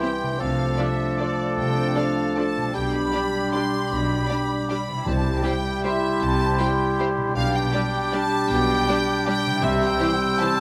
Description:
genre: classical, orchestral ballroom waltz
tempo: 156 BPM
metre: 3/4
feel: uneven beats, rubato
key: C major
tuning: A4 = 440 Hz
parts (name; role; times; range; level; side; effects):
- rich studio violin section; melody; 0.0-10.6 s; D5 to C6; -32 LUFS; equal; none
- rich studio violin section; second line; 0.0-10.5 s; E4 to D5; -38 LUFS; equal; none
- silver concert flute; second line; 0.0-10.6 s; C6 to E6; -34 LUFS; equal; none
- warm clarinet; second line; 0.0-10.6 s; C4 to E4; -34 LUFS; equal; none
- warm oboe; second line; 0.0-10.6 s; G4 to C5; -33 LUFS; equal; none
- mellow bassoon; accompaniment; 0.0-10.6 s; E3 to G3; -30 LUFS; equal; none
- warm studio viola section; accompaniment; 0.0-10.5 s; E3 to E4; -34 LUFS; equal; none
- warm French horn section; sustained chords; 0.0-10.5 s; E3 to E4; -34 LUFS; equal; none
- concert harp; arpeggios; 0.0-10.6 s; B2 to D5; -35 LUFS; equal; none
- rich studio cello section; bass; 0.4-9.9 s; B2 to C3; -34 LUFS; equal; none
- rich studio double bass section; bass; 0.4-9.9 s; B1 to C2; -32 LUFS; equal; none
- timpani; percussion; 5.1-5.6, 9.6-10.2 s; C3; -34 LUFS; equal; none
room: moderate concert hall reverb, RT60 2.3 s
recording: close, detailed microphones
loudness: -23 LUFS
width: mono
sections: 0.0-10.6 A section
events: none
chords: 0.4 Dm7/C; 2.7 G/B; 5.1 C; 7.4 G/B; 9.6 C

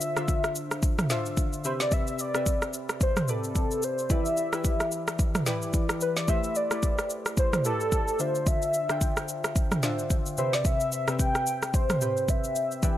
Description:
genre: amapiano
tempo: 110 BPM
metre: 4/4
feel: swing 58% on 16ths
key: A minor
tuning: A4 = 441 Hz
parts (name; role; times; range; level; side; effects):
- warm velvety synth lead; melody; 0.0-13.0 s; A4 to G5; -30 LUFS; equal; chorus, tape echo
- glassy digital keys; accompaniment; 0.0-13.0 s; C3 to G5; -32 LUFS; left 1 dB; chorus
- deep house drum kit; drums; 0.0-13.0 s; kick drum, rim click, shaker, snare drum, toms; -27 LUFS; equal; none
room: little or no reverb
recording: none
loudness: -24 LUFS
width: side -12 dB against mid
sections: 0.0-13.0 A section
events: none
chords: 0.0 Dm9; 1.6 Am9/C; 4.1 Em7; 6.3 Am9; 8.2 Dm9; 10.4 Cmaj7

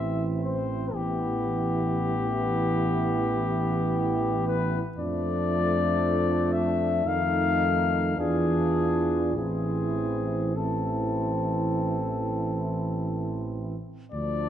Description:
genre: classical, hymn-like piece for brass band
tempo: 49-61 BPM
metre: 4/4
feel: rubato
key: A minor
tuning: A4 = 441 Hz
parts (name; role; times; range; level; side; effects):
- warm flugelhorn; melody; 0.0-14.5 s; G4 to F5; -29 LUFS; left 6 dB; none
- dark French horn section; second line; 0.0-14.5 s; D4 to F4; -32 LUFS; right 8 dB; none
- mellow trombone; accompaniment; 0.0-14.5 s; Eb3 to F3; -33 LUFS; right 2 dB; none
- warm trombone section; accompaniment; 0.0-14.5 s; A3 to D4; -33 LUFS; left 1 dB; none
- dark tuba; bass; 0.0-14.5 s; A1 to F2; -30 LUFS; right 1 dB; none
room: moderate concert hall reverb, RT60 2.0 s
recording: dark, warm production, nothing above 10.6 kHz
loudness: -24 LUFS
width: side -10 dB against mid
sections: 0.0-14.1 A section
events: none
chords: 0.0 Am; 0.9 Em/A; 5.0 Dm/F; 7.0 F7; 8.2 E7b9; 9.3 Am

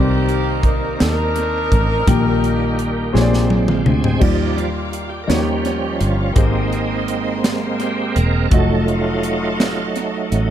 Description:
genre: slow gospel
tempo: 56 BPM (dotted quarters)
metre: 6/8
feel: straight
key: Eb major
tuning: A4 = 439 Hz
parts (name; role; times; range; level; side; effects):
- warm saxophone section; melody; 0.0-3.5 s; Bb3 to Bb4; -22 LUFS; equal; tape echo
- warm concert grand piano; accompaniment; 0.0-10.5 s; Ab2 to G5; -22 LUFS; left 4 dB; tape echo
- bright tonewheel organ; sustained chords; 0.0-10.5 s; C3 to Ab5; -22 LUFS; right 4 dB; fast rotary speaker, overdrive, chorus vibrato
- fingered electric bass; bass; 0.0-10.5 s; Fb1 to Eb2; -20 LUFS; equal; none
- crisp fusion drum kit; drums; 0.3-10.5 s; crash cymbal, hi-hat, kick drum, snare drum, toms; -19 LUFS; equal; tape echo
- clear studio string section; sustained chords; 4.2-10.5 s; Eb5 to D6; -32 LUFS; left 2 dB; none
room: light reverb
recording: echo-heavy mix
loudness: -15 LUFS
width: side -10 dB against mid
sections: 0.0-4.2 A section; 4.2-10.5 B section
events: drum fill 3.1-4.2; tonewheel organ fill 3.1-4.2; tonewheel organ solo 4.2-10.5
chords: 0.0 Cm9; 2.1 Eb/Bb; 3.1 Bb13; 4.2 Ebmaj9; 5.3 Eb7; 6.4 Abmaj9; 8.5 F7b9

